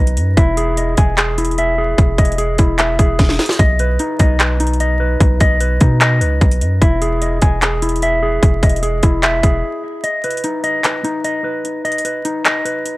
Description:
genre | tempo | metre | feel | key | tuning
hip hop, trap | 149 BPM | 4/4 | half-time | B major | A4 = 441 Hz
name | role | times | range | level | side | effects
mellow electric guitar | arpeggios | 0.0-13.0 s | D#4 to G#5 | -18 LUFS | equal | low-pass filter, analog delay
long sustained 808-style bass | bass | 0.0-9.6 s | E1 to B2 | -17 LUFS | equal | none
trap drum kit | drums | 0.1-12.9 s | handclaps, hi-hat, kick drum, snare drum | -14 LUFS | equal | overdrive
room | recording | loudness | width
digital ambience | dry, gritty hardware recording, vinyl crackle | -13 LUFS | side -19 dB against mid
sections
0.0-10.0 A section; 10.0-13.0 B section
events
drum fill 3.2-3.6; break 9.6-10.0, 10.0-13.0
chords
0.4 Emaj7; 3.6 B; 6.8 Emaj7; 10.0 B

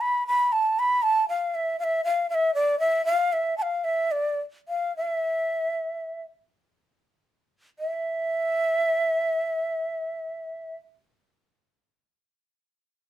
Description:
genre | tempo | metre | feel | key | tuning
japanese traditional | 36-59 BPM | 2/4 | rubato | E in sen | A4 = 439 Hz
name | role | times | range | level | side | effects
mellow shakuhachi | solo | 0.0-10.8 s | D5 to B5 | -23 LUFS | equal | none
room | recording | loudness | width
light reverb | none | -23 LUFS | side -12 dB against mid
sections
0.0-7.8 A section; 7.8-13.1 B section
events
slowing down 2.8-7.8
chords
none

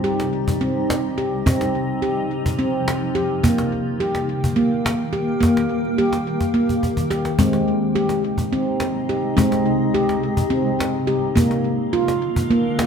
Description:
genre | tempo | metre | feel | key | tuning
world meditative, meditative tuned percussion | 212 BPM (eighths) | 7/8 | straight | C minor | A4 = 441 Hz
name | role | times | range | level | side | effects
granular cloud pad | sustained chords | 0.0-12.9 s | C3 to G4 | -24 LUFS | left 1 dB | built-in reverb
handpan | arpeggios | 0.0-12.9 s | Ab3 to G4 | -20 LUFS | equal | ping-pong delay
cajon | percussion | 0.2-12.9 s | none | -23 LUFS | equal | none
room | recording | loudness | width
wet echo chamber reverb, RT60 1.4 s, small room ambience | none | -18 LUFS | side -7 dB against mid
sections
0.0-12.9 A section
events
drum fill 6.7-7.4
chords
0.0 Cm; 3.4 Eb; 7.4 Ab; 11.4 Bb

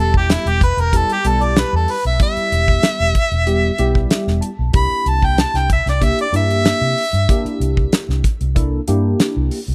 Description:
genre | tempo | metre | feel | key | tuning
straight-eighth soul blues | 94 BPM | 4/4 | straight | E minor | A4 = 440 Hz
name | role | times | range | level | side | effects
clear harmonica | melody | 0.0-7.6 s | E4 to B5 | -21 LUFS | equal | overdrive
tine electric piano | accompaniment | 0.0-9.6 s | G3 to A5 | -25 LUFS | equal | phaser
vintage muted fingered electric bass | bass | 0.0-9.7 s | E1 to C3 | -21 LUFS | equal | none
damped 70s drum kit | drums | 0.1-9.7 s | hi-hat, kick drum, snare drum | -20 LUFS | equal | none
room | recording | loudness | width
little or no reverb | none | -17 LUFS | mono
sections
0.0-9.7 A section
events
harmonica solo 0.0-9.7; tine electric piano fill 3.5-4.7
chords
0.0 Em; 4.7 C7

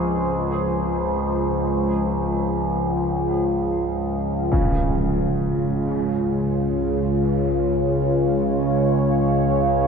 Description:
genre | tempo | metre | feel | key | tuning
dark ambient drone | free time | none | none | C# major | A4 = 439 Hz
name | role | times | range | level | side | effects
deep dark ambient pad | sustained chords | 0.0-9.9 s | G#3 to C#5 | -23 LUFS | equal | chorus, built-in reverb
clear grand piano | arpeggios | 0.0-9.9 s | B#2 to G#4 | -32 LUFS | right 2 dB | diffuse ambient delay
overtone-sweeping drone | drone | 0.0-9.9 s | C#2 to E#3 | -22 LUFS | equal | chorus, built-in reverb
impact | percussion | 4.5-4.7 s | none | -26 LUFS | equal | low-pass filter on sfx
room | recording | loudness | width
wet huge ambient reverb, RT60 7.4 s | dark, warm production | -19 LUFS | side -6 dB against mid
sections
0.0-4.5 A section; 4.5-9.9 A section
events
none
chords
0.0 G#/C#; 4.5 C#

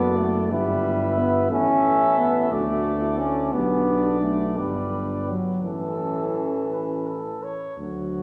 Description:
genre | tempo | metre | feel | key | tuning
classical, brass quintet | 55-61 BPM (dotted quarters) | 6/8 | rubato | unclear | A4 = 440 Hz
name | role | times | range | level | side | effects
mellow trumpet | melody | 0.0-7.8 s | A4 to E5 | -32 LUFS | equal | none
warm flugelhorn | second line | 0.0-8.2 s | F#4 to B4 | -34 LUFS | equal | none
clear trombone | accompaniment | 0.0-8.2 s | E3 to C#4 | -27 LUFS | equal | none
warm French horn | accompaniment | 0.0-7.4 s | C#4 to F#4 | -34 LUFS | equal | none
clear bass trombone | bass | 0.0-8.2 s | F#1 to D2 | -30 LUFS | equal | none
room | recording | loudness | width
wet concert hall reverb, RT60 2.4 s | heard from further back in the room, small room ambience | -23 LUFS | mono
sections
0.0-7.8 A section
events
none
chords
0.0 D/F#; 0.5 Em/G; 1.5 A; 2.5 D; 3.5 G/B; 4.6 G; 5.6 A

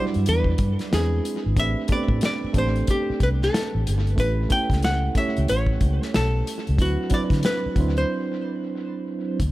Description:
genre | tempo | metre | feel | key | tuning
R&B, neo-soul | 92 BPM | 4/4 | swing 61% on 16ths | unclear | A4 = 440 Hz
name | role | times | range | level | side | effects
archtop guitar, miked and amplified | melody | 0.0-9.0 s | F#4 to G5 | -27 LUFS | left 1 dB | tape echo
mellow reed electric piano | accompaniment | 0.0-9.4 s | F#3 to D5 | -27 LUFS | right 4 dB | tape echo
warm soul drum kit | drums | 0.1-9.5 s | hi-hat, kick drum, snare drum | -26 LUFS | equal | tape echo
vintage muted fingered electric bass | bass | 0.2-9.5 s | G1 to D3 | -23 LUFS | equal | none
room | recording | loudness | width
small room ambience | echo-heavy mix | -20 LUFS | side -17 dB against mid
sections
0.0-9.4 A section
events
break 8.1-9.4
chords
0.0 Em9; 0.9 E7b13; 1.6 Am11; 4.2 A9; 6.8 D13

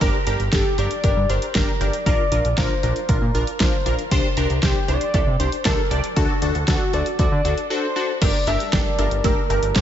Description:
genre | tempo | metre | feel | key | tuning
synth-pop | 117 BPM | 4/4 | straight | G minor | A4 = 440 Hz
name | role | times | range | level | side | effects
funky polysynth comp | accompaniment | 0.0-9.8 s | D4 to D5 | -24 LUFS | left 1 dB | chorus, slapback echo
fat analog bass | bass | 0.0-9.8 s | G1 to D3 | -23 LUFS | equal | none
deep house drum kit | drums | 0.0-9.8 s | crash cymbal, hi-hat, kick drum, snare drum | -21 LUFS | equal | overdrive
mellow horn-like synth lead | melody | 0.5-9.8 s | F#4 to E5 | -25 LUFS | left 1 dB | chorus, tremolo, slapback echo, tape echo
sweeping resonant pad | sustained chords | 8.2-9.8 s | G3 to A5 | -33 LUFS | left 1 dB | chorus, phaser
resonant blip pluck | arpeggios | 8.2-9.8 s | A3 to G4 | -29 LUFS | right 3 dB | phaser, slapback echo, tape echo
room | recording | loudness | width
light reverb | nothing above 7.8 kHz | -18 LUFS | side -10 dB against mid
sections
0.0-8.2 A section; 8.2-9.8 B section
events
break 7.7-8.2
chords
0.0 Gm; 2.1 Bbadd9; 4.1 Csus2; 6.2 D; 8.2 Gmadd9

